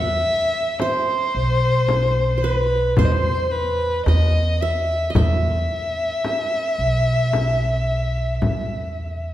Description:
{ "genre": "Arabic maqam ensemble", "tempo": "110 BPM (eighths)", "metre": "10/8", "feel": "straight", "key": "unclear", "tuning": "A4 = 439 Hz", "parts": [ { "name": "dark violin", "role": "melody", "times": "0.0-9.3 s", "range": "B4 to E5", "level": "-22 LUFS", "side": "left 1 dB", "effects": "none" }, { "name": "qanun", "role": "second line", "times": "0.0-9.3 s", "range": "B4 to E5", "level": "-27 LUFS", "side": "right 4 dB", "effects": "slapback echo" }, { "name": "upright bass", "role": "bass", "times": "0.0-9.3 s", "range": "B1 to E2", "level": "-21 LUFS", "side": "equal", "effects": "none" }, { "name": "frame drum", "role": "percussion", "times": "0.8-8.7 s", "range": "none", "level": "-25 LUFS", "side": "left 2 dB", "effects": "none" } ], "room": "wet recital hall reverb, RT60 1.9 s", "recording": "heard from further back in the room", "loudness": "-18 LUFS", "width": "side -13 dB against mid", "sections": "0.0-9.3 A section", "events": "none", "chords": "none" }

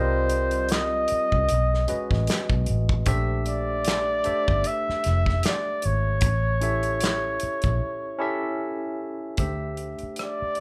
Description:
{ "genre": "R&B, neo-soul", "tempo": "76 BPM", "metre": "4/4", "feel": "swing 57% on 16ths", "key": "unclear", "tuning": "A4 = 440 Hz", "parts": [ { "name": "breathy flugelhorn", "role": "melody", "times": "0.0-10.6 s", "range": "C5 to E5", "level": "-28 LUFS", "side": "equal", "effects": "none" }, { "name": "barky tine electric piano", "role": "accompaniment", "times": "0.0-10.6 s", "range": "G3 to E5", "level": "-33 LUFS", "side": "equal", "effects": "overdrive" }, { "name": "vintage muted fingered electric bass", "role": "bass", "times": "0.0-10.5 s", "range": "F1 to D2", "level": "-28 LUFS", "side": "equal", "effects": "none" }, { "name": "warm soul drum kit", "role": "drums", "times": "0.3-10.6 s", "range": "handclaps, hi-hat, kick drum, rim click, snare drum", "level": "-29 LUFS", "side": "equal", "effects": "none" } ], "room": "light reverb", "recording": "band playing live in one room", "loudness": "-25 LUFS", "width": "mono", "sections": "0.0-9.4 A section; 9.4-10.6 B section", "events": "break 7.8-9.4", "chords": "0.0 Cm7; 1.5 B7; 3.1 Bbmaj9; 6.2 A7; 9.4 D9sus4" }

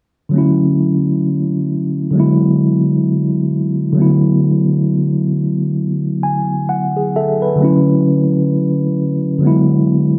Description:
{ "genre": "hip hop", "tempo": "66 BPM", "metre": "4/4", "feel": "swing 58% on 16ths", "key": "unclear", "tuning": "A4 = 439 Hz", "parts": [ { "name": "mellow tine electric piano", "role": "accompaniment", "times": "0.3-10.2 s", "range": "D3 to G#5", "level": "-15 LUFS", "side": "equal", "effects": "cassette tape" } ], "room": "wet studio reverb, RT60 0.6 s", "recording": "cassette tape", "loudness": "-15 LUFS", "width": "mono", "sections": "0.3-10.2 A section", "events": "tine electric piano fill 5.8-7.6", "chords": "0.3 Dmaj9; 2.2 E9; 4.0 D6; 7.6 Dmaj13; 9.4 E9" }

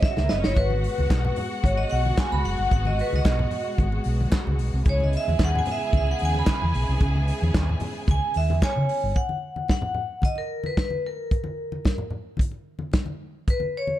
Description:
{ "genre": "disco", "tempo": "112 BPM", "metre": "4/4", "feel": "straight", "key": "unclear", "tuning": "A4 = 440 Hz", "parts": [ { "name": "vibraphone with hard mallets", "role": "melody", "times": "0.0-14.0 s", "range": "A#4 to B5", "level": "-28 LUFS", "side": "equal", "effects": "none" }, { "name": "clear studio string section", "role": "sustained chords", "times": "0.0-9.1 s", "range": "B2 to F#4", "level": "-34 LUFS", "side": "equal", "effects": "none" }, { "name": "warm soul drum kit", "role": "drums", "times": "0.0-13.6 s", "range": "hi-hat, kick drum, snare drum", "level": "-23 LUFS", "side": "equal", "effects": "none" }, { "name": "clear studio string section", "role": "second line", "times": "0.1-8.9 s", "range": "F#3 to G#5", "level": "-34 LUFS", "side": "left 1 dB", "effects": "none" }, { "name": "fingered electric bass", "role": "bass", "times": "0.2-9.1 s", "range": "F#1 to C#3", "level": "-24 LUFS", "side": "equal", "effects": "none" }, { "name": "congas", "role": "percussion", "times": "0.2-14.0 s", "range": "none", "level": "-33 LUFS", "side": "left 2 dB", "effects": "none" }, { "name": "group handclap", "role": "percussion", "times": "1.1-8.8 s", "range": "none", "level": "-40 LUFS", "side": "right 1 dB", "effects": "none" } ], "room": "light reverb, small room ambience", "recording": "dark, warm production", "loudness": "-22 LUFS", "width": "side -13 dB against mid", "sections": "0.0-9.2 A section; 9.2-14.0 B section", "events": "vibraphone solo 0.0-9.2; drum fill 0.0-0.6", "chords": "0.0 C#m7; 0.6 G#m7; 4.9 C#m7; 9.2 N.C." }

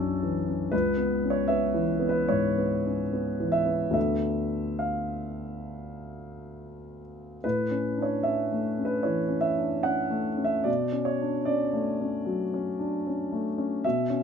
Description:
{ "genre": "classical, impressionist solo piano", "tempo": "67-80 BPM", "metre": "4/4", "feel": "rubato", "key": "unclear", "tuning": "A4 = 440 Hz", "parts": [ { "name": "warm concert grand piano", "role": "solo", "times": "0.0-14.2 s", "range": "C#2 to A6", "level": "-25 LUFS", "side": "equal", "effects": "none" } ], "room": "light reverb", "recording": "close, detailed microphones", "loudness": "-25 LUFS", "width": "side -7 dB against mid", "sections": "0.0-14.2 A section", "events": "none", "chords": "0.0 Bm11; 0.7 C#m7; 4.0 Dm6; 7.4 A; 10.7 Bm9" }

